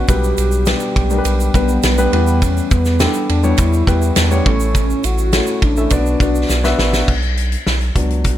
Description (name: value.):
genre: piano-driven pop.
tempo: 103 BPM.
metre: 4/4.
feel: straight.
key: B minor.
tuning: A4 = 440 Hz.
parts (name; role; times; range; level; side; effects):
warm velvety synth lead; melody; 0.0-6.8 s; B3 to G4; -22 LUFS; right 1 dB; chorus.
dark concert grand piano; accompaniment; 0.0-8.4 s; A2 to E5; -19 LUFS; left 2 dB; none.
round analog bass; bass; 0.0-8.4 s; A1 to E2; -17 LUFS; equal; none.
loose indie drum kit; drums; 0.1-8.4 s; crash cymbal, hi-hat, kick drum, ride cymbal, snare drum; -18 LUFS; equal; none.
egg shaker; percussion; 0.1-7.1 s; none; -32 LUFS; right 8 dB; none.
room: small room ambience.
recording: none.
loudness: -13 LUFS.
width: side -12 dB against mid.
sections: 0.0-7.1 A section; 7.1-8.4 B section.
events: drum fill 6.5-7.1; grand piano solo 7.1-8.4.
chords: 0.1 G/B; 2.1 Em; 4.5 A; 5.9 Bm.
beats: | 0.09 0.67 1.25 1.84 | 2.42 3.00 3.58 4.17 | 4.75 5.33 5.92 6.50 | 7.08 7.67 8.25.